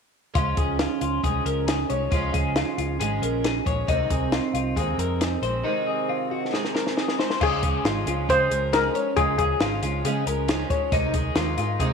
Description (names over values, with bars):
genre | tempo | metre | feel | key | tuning
jangly indie pop | 136 BPM | 4/4 | straight | Db major | A4 = 440 Hz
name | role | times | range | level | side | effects
fingerpicked twelve-string acoustic guitar | accompaniment | 0.3-11.9 s | C3 to Eb4 | -29 LUFS | right 11 dB | none
twelve-string electric guitar | arpeggios | 0.4-11.9 s | Eb4 to Db5 | -27 LUFS | left 9 dB | none
vintage muted fingered electric bass | bass | 0.4-11.9 s | Ab1 to Db3 | -28 LUFS | equal | none
compact cocktail drum kit | drums | 0.4-11.9 s | crash cymbal, hi-hat, kick drum, snare drum | -27 LUFS | equal | none
steel pan | melody | 7.4-10.7 s | Ab4 to C5 | -23 LUFS | left 2 dB | slapback echo
room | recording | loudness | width
moderate plate reverb, RT60 1.3 s, small room ambience | 1960s-style stereo with parts hard left and right | -22 LUFS | side -6 dB against mid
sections
0.4-7.4 A section; 7.4-11.9 B section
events
drum fill 6.5-7.4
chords
0.4 Db; 3.9 Ab; 7.4 Db; 10.9 Ab/C